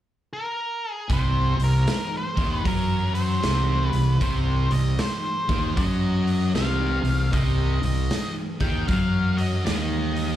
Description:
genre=blues rock power trio and southern rock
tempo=77 BPM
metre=4/4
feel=swing 64% on 8ths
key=unclear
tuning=A4 = 440 Hz
part: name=octave-fuzz lead guitar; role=melody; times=0.3-10.4 s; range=Bb4 to G5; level=-29 LUFS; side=left 1 dB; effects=distortion, slapback echo
part: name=thick fuzz guitar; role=riff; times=1.1-10.4 s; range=C3 to F#3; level=-26 LUFS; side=equal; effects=distortion
part: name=fuzz fingered electric bass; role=bass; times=1.1-10.4 s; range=C2 to F#2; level=-24 LUFS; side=equal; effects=overdrive
part: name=raw garage drum kit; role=drums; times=1.1-10.3 s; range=hi-hat, kick drum, snare drum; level=-27 LUFS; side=equal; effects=none
room=little or no reverb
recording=live gig heard through the venue's PA, club ambience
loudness=-21 LUFS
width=side -12 dB against mid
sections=0.0-1.1 A section; 1.1-10.4 B section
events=none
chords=0.0 N.C.; 1.1 Cm

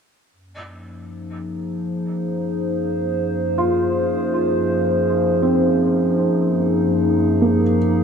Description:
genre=ambient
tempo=free time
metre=none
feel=none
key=Gb lydian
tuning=A4 = 442 Hz
part: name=warbly tape-like pad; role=sustained chords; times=1.0-8.0 s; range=Gb2 to C5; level=-18 LUFS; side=equal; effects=chorus, built-in reverb
part: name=felt-muted upright piano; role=arpeggios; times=3.6-8.0 s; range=Bb3 to F4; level=-23 LUFS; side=right 2 dB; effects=analog delay
room=wet spring reverb, RT60 2.8 s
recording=echo-heavy mix, cassette tape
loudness=-17 LUFS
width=side -6 dB against mid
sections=0.3-8.0 A section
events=none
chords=0.3 Gbmaj7

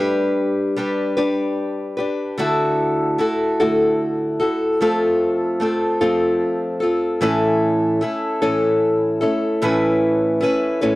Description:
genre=rock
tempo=50 BPM (dotted quarters)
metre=6/8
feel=straight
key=unclear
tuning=A4 = 440 Hz
part: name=picked old ladder-braced acoustic guitar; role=solo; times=0.0-11.0 s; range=A2 to B4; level=-17 LUFS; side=equal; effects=none
room=moderate booth ambience, RT60 0.2 s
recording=dry, close 1970s-style studio recording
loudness=-17 LUFS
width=side -18 dB against mid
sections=0.0-9.6 A section; 9.6-11.0 B section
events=none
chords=0.0 G; 2.4 Dadd9; 4.8 F; 7.2 A; 9.6 Aadd9

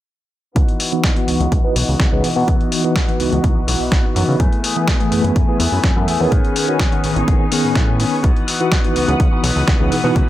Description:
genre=filtered disco house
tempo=125 BPM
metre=4/4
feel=straight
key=C# minor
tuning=A4 = 441 Hz
part: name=bright symphonic string section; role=sustained chords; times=0.6-10.3 s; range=E3 to D#6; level=-26 LUFS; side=left 2 dB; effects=sidechain pumping, low-pass filter
part: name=electric guitar with an envelope filter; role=riff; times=0.6-10.3 s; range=D#3 to G#4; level=-24 LUFS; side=left 2 dB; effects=sidechain pumping, low-pass filter
part: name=fat analog bass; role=bass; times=0.6-10.2 s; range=A1 to C#3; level=-20 LUFS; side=equal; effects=sidechain pumping, low-pass filter
part: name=dusty soul sampler-style drum kit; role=drums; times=0.6-10.3 s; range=hi-hat, snare drum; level=-22 LUFS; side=left 1 dB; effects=sidechain pumping on hats, small room ambience
part: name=electronic kick drum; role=drums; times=0.6-10.3 s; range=none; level=-16 LUFS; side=equal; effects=small room ambience
part: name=barky tine electric piano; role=accompaniment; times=0.9-10.3 s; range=D#3 to A4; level=-20 LUFS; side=equal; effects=fast stereo tremolo, phaser, sidechain pumping, low-pass filter
room=little or no reverb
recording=none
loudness=-14 LUFS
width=side -14 dB against mid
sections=0.6-10.3 A section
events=filter sweep 0.6-10.3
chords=0.6 C#m11; 4.4 F#m11; 6.3 Amaj9#11; 8.2 C#m11

